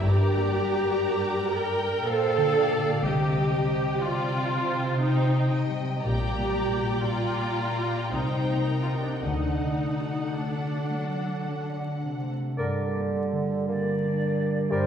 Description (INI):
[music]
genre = classical, slow romantic movement for symphony orchestra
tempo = 52-61 BPM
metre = 3/4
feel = rubato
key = G minor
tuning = A4 = 440 Hz
[part]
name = warm symphonic violin section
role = melody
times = 0.0-12.3 s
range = F#5 to Bb5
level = -37 LUFS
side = left 3 dB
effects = none
[part]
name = rich symphonic violin section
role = second line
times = 0.0-12.4 s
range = A4 to G5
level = -34 LUFS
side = equal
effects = none
[part]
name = rich symphonic viola section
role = accompaniment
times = 0.0-12.0 s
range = D4 to Bb4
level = -28 LUFS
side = right 1 dB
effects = none
[part]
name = concert harp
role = arpeggios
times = 0.0-14.9 s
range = G2 to Eb5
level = -30 LUFS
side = left 2 dB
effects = none
[part]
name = clear symphonic double bass section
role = bass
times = 0.0-10.3 s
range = G1 to D2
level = -35 LUFS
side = right 1 dB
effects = none
[part]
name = dark symphonic cello section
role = bass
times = 0.0-12.6 s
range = G2 to A3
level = -30 LUFS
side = right 1 dB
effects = none
[part]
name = clear oboe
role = second line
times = 12.6-14.9 s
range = D5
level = -36 LUFS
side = equal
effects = none
[part]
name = warm clarinet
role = second line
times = 12.6-14.9 s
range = Bb4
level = -34 LUFS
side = left 1 dB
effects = none
[part]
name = warm bassoon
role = accompaniment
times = 12.6-14.9 s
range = D3 to Bb3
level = -29 LUFS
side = right 2 dB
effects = none
[part]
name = dark French horn section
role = sustained chords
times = 12.6-14.9 s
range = G3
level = -29 LUFS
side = right 3 dB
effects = none
[part]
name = large flute ensemble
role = second line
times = 13.7-14.9 s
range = C5 to D5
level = -34 LUFS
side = right 2 dB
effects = none
[sound]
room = wet scoring stage reverb, RT60 1.6 s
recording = heard from further back in the room, vinyl crackle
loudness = -24 LUFS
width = side -8 dB against mid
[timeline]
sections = 0.0-12.6 A section; 12.6-14.9 B section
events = none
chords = 0.0 Gm; 3.0 Cm; 6.0 Gm/Bb; 8.1 Cm7; 9.2 D; 12.6 Gm